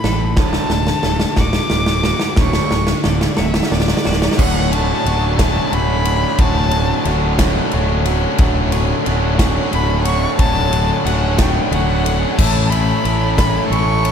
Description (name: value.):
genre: post-rock.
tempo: 60 BPM (dotted quarters).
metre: 6/8.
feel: straight.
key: D major.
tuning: A4 = 440 Hz.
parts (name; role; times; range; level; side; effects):
warm violin; melody; 0.0-14.1 s; D5 to D6; -23 LUFS; left 2 dB; digital delay.
twelve-string electric guitar; arpeggios; 0.0-4.4 s; D2 to A4; -25 LUFS; left 5 dB; digital delay.
raw garage guitar; riff; 0.0-14.1 s; D2 to A4; -22 LUFS; right 14 dB; overdrive.
fuzz fingered electric bass; bass; 0.0-14.1 s; D1 to A1; -19 LUFS; equal; overdrive.
big rock drum kit; drums; 0.0-14.1 s; crash cymbal, kick drum, ride cymbal, snare drum; -19 LUFS; equal; none.
biting overdriven guitar; riff; 4.4-14.1 s; D2 to A4; -21 LUFS; left 14 dB; none.
room: small room ambience.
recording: none.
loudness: -14 LUFS.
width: side -8 dB against mid.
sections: 0.0-4.4 A section; 4.4-14.1 B section.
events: build-up 0.0-4.4; drum fill 0.0-4.4.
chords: 0.4 D; 4.4 Dmaj7; 12.4 Aadd9.